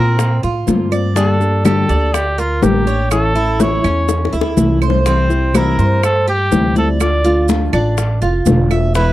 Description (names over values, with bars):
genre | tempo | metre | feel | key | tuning
latin, Cuban son and guajira | 123 BPM | 4/4 | straight | D minor | A4 = 440 Hz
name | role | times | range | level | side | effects
clear trumpet | melody | 0.0-9.1 s | F4 to D5 | -19 LUFS | right 1 dB | none
nylon-string guitar | accompaniment | 0.0-9.1 s | B2 to G4 | -18 LUFS | left 4 dB | none
Cuban tres | arpeggios | 0.0-9.1 s | C4 to E5 | -21 LUFS | right 3 dB | none
upright bass | bass | 0.0-9.1 s | E1 to Bb2 | -16 LUFS | right 1 dB | none
bongos | percussion | 0.2-9.1 s | none | -23 LUFS | left 7 dB | none
congas | percussion | 0.2-9.1 s | none | -21 LUFS | left 1 dB | none
maracas | percussion | 0.2-9.1 s | none | -30 LUFS | right 23 dB | none
claves | percussion | 0.9-9.0 s | none | -26 LUFS | right 22 dB | none
room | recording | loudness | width
little or no reverb | dry, close 1970s-style studio recording | -12 LUFS | side -15 dB against mid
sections
0.0-9.1 A section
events
drum fill 4.1-5.1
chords
0.0 Bbadd9; 1.2 Gm; 3.1 A; 5.1 C; 7.0 Dm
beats
0.19 0.68 | 1.17 1.65 2.14 2.62 | 3.11 3.60 4.08 4.57 | 5.06 5.54 6.03 6.52 | 7.01 7.49 7.98 8.47 | 8.95